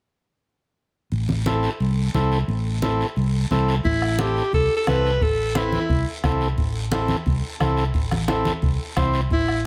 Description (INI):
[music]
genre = latin, cumbia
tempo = 176 BPM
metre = 4/4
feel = straight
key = A minor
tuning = A4 = 440 Hz
[part]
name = fingered electric bass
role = bass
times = 1.1-9.7 s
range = A1 to C2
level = -26 LUFS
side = equal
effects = none
[part]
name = congas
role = percussion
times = 1.1-9.5 s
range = none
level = -30 LUFS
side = equal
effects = none
[part]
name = guiro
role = percussion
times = 1.1-9.6 s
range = none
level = -38 LUFS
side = equal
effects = none
[part]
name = combo organ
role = accompaniment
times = 1.5-9.2 s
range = C4 to C5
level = -29 LUFS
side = equal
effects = none
[part]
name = bright alto saxophone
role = melody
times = 3.8-6.1, 9.3-9.6 s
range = E4 to B4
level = -25 LUFS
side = equal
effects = tape echo
[part]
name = bombo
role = percussion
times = 3.8-9.7 s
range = none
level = -28 LUFS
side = equal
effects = none
[sound]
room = light reverb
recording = none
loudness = -22 LUFS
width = mono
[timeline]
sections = 1.1-3.9 A section; 3.9-9.7 B section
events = none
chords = 1.1 Am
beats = | 1.12 1.46 1.80 2.14 | 2.48 2.83 3.17 3.51 | 3.85 4.19 4.53 4.88 | 5.22 5.56 5.90 6.24 | 6.58 6.92 7.26 7.61 | 7.95 8.29 8.63 8.97 | 9.31 9.65